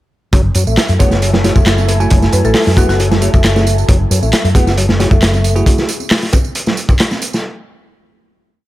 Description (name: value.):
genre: breakbeat, breaks.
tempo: 135 BPM.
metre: 4/4.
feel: straight.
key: F# minor.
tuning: A4 = 443 Hz.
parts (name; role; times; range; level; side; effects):
lush unison pad; sustained chords; 0.7-5.6 s; F#3 to G#5; -25 LUFS; equal; chorus, phaser, sidechain pumping.
tonewheel organ; riff; 0.3-5.5 s; F#3 to B3; -21 LUFS; equal; overdrive, fast rotary speaker, tube saturation, vintage 12-bit sampler grit, ping-pong delay.
hollow-body short-scale fingered electric bass; bass; 0.3-5.6 s; F#1 to F#2; -14 LUFS; equal; none.
crunchy breakbeat drum kit; drums; 0.3-7.4 s; hi-hat, kick drum, snare drum; -13 LUFS; equal; none.
electronic tambourine and handclaps; drums; 0.3-7.4 s; none; -22 LUFS; right 2 dB; overdrive.
congas and bongos; percussion; 0.3-7.3 s; none; -26 LUFS; right 3 dB; none.
buzzing marimba with medium mallets; melody; 1.0-3.0 s; F#4 to C#5; -21 LUFS; left 1 dB; small speaker sound, ping-pong delay.
bell-like tine electric piano; stabs; 1.0-5.9 s; A3 to G#5; -21 LUFS; right 2 dB; vintage 12-bit sampler grit, ping-pong delay.
room: small room ambience.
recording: none.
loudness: -10 LUFS.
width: side -16 dB against mid.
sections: 0.3-7.4 drop.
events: drop 0.3-7.4.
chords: 0.3 F#m9.